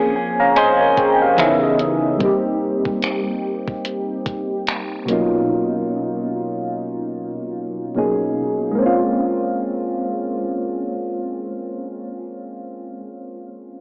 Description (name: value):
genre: contemporary R&B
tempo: 73 BPM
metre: 4/4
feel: swing 58% on 16ths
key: Bb dorian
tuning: A4 = 443 Hz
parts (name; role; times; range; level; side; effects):
- soft electric-piano-like synth keys; accompaniment; 0.0-13.8 s; B2 to Bb5; -21 LUFS; equal; chorus, phaser, cassette tape
- direct-recorded clean electric guitar; arpeggios; 0.0-2.3 s; Db3 to C5; -24 LUFS; equal; cassette tape, tape echo
- crisp 8-bit digital drum machine; drums; 0.6-5.3 s; finger snaps, hi-hat, kick drum; -29 LUFS; equal; overdrive
room: moderate spring reverb, RT60 2.1 s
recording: home recording on cassette, AM radio sound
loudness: -20 LUFS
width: mono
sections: 0.0-8.8 A section; 8.8-12.1 B section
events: synth keys fill 0.0-2.2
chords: 0.0 Bbm9; 1.4 Dbm7; 2.2 Cm7; 5.1 Bmaj9#11; 8.8 Bbm9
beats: 0.56 1.38 | 2.21 3.03 3.85 4.67 | 5.49 6.32 7.14 7.96 | 8.78 9.60 10.43 11.25